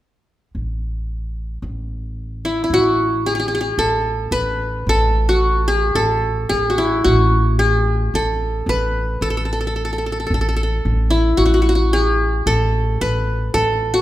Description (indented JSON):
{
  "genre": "Arabic maqam ensemble",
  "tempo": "111 BPM",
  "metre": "4/4",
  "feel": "straight",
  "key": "A maqam rast",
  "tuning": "A4 = 443 Hz",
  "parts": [
    { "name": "upright bass", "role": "bass", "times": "0.5-14.0 s", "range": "A1", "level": "-20 LUFS", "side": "equal", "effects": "none" },
    { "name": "qanun", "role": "melody", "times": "2.5-14.0 s", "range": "E4 to B4", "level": "-18 LUFS", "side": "equal", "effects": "none" }
  ],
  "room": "moderate recital hall reverb, RT60 1.7 s",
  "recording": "minimal, uncompressed stereo recording",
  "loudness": "-16 LUFS",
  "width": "side -14 dB against mid",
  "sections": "0.5-2.7 A section; 2.7-11.4 B section; 11.4-14.0 B section",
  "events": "none",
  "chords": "none"
}